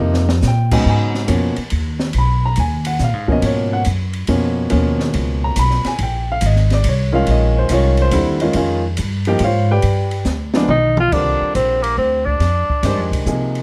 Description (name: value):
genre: modal jazz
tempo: 140 BPM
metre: 3/4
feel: swing 68% on 8ths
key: G# dorian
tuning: A4 = 440 Hz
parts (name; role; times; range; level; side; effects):
- warm baby grand piano; accompaniment; 0.0-13.6 s; Ab2 to B5; -21 LUFS; equal; none
- upright bass; bass; 0.0-13.6 s; G#1 to C3; -20 LUFS; equal; none
- open jazz drum kit; drums; 0.1-13.6 s; crash cymbal, hi-hat, kick drum, ride cymbal, snare drum, toms; -28 LUFS; equal; none
- breathy tenor saxophone; melody; 10.7-13.1 s; Bb3 to F4; -19 LUFS; equal; none
room: light reverb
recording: dark, warm production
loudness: -17 LUFS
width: mono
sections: 0.9-11.1 A section; 11.1-13.6 B section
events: drum fill 0.0-0.4, 10.3-11.1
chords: 0.0 Bb9sus4; 0.9 G#m9; 6.0 A#m9; 9.8 G; 11.1 C9sus4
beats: 0.01 0.43 | 0.86 1.29 1.72 | 2.15 2.57 3.00 | 3.43 3.86 4.28 | 4.71 5.14 5.57 | 5.99 6.42 6.85 | 7.28 7.70 8.13 | 8.56 8.99 9.41 | 9.84 10.27 10.70 | 11.13 11.55 11.98 | 12.41 12.84 13.27